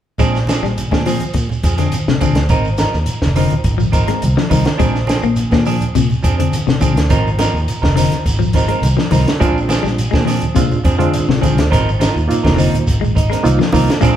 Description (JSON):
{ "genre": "afrobeat", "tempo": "104 BPM", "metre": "4/4", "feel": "straight", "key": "Bb mixolydian", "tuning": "A4 = 440 Hz", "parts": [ { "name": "clean electric guitar", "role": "arpeggios", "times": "0.2-14.2 s", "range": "C3 to Bb3", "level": "-20 LUFS", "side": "left 8 dB", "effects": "none" }, { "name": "semi-hollow electric guitar", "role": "stabs", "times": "0.2-14.2 s", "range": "F3 to Bb4", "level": "-20 LUFS", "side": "right 4 dB", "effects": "spring reverb" }, { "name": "fingered electric bass", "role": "bass", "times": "0.2-14.2 s", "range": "F1 to Bb2", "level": "-18 LUFS", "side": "equal", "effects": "none" }, { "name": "compact cocktail drum kit", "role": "drums", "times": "0.2-14.2 s", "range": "hi-hat, kick drum, snare drum", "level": "-18 LUFS", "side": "equal", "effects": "none" }, { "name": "congas", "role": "percussion", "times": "0.2-14.2 s", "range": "none", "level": "-23 LUFS", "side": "right 2 dB", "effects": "none" }, { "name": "shekere", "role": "percussion", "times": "0.2-14.2 s", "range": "none", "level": "-26 LUFS", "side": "right 2 dB", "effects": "none" }, { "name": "barky reed electric piano", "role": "accompaniment", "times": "9.4-14.2 s", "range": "Ab3 to F4", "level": "-19 LUFS", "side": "right 3 dB", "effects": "overdrive, fast tremolo" } ], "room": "wet large studio reverb, RT60 1.4 s", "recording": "band playing live in one room", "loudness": "-13 LUFS", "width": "side -10 dB against mid", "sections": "0.2-14.2 A section", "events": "none", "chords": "0.2 Bb9; 2.5 Ab69; 4.8 Bb9; 7.1 Ab69; 9.4 Bb9; 11.7 Ab69" }